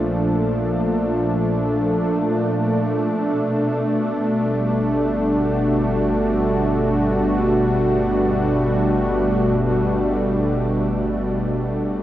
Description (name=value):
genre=ambient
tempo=free time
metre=none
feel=none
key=unclear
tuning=A4 = 440 Hz
part: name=warm analog pad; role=sustained chords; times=0.0-12.0 s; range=Bb2 to A4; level=-18 LUFS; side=equal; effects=chorus, shimmer reverb
part: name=deep rumbling drone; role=bass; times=0.0-12.0 s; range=G1 to Bb1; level=-32 LUFS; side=equal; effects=built-in reverb
room=wet huge ambient reverb, RT60 8.0 s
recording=worn, warbling old tape, cassette tape, warbly pitch drift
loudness=-18 LUFS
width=side -13 dB against mid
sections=0.0-12.0 A section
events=fade-in on synth drone 0.0-12.0; fade-out 9.5-12.0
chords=0.0 Bbmaj7; 3.1 Gmaj9